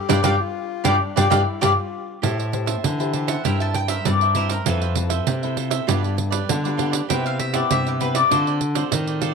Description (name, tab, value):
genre	samba and choro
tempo	99 BPM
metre	4/4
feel	straight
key	A minor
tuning	A4 = 440 Hz
part	warm tenor saxophone	second line	0.0-2.2 s	D4 to G4	-31 LUFS	left 12 dB	none
part	bowl-back mandolin	melody	0.1-8.5 s	G4 to A5	-23 LUFS	left 3 dB	none
part	cavaquinho	accompaniment	0.1-9.3 s	E4 to A5	-29 LUFS	right 13 dB	none
part	nylon-string guitar	accompaniment	0.1-9.3 s	G2 to C5	-28 LUFS	left 11 dB	none
part	nylon-string guitar	bass	0.1-9.3 s	F2 to D#3	-23 LUFS	equal	none
part	pandeiro	percussion	0.1-9.3 s	none	-24 LUFS	right 12 dB	none
room	light reverb, small room ambience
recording	1960s-style stereo with parts hard left and right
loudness	-19 LUFS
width	side -5 dB against mid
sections	0.0-2.2 A section; 2.2-9.3 B section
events	band accent 0.0-2.2; mandolin solo 2.2-9.3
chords	0.0 G7; 2.2 Am7; 3.5 C7/G; 4.7 Fmaj7; 5.9 G9; 7.1 Cmaj7; 8.3 Dm7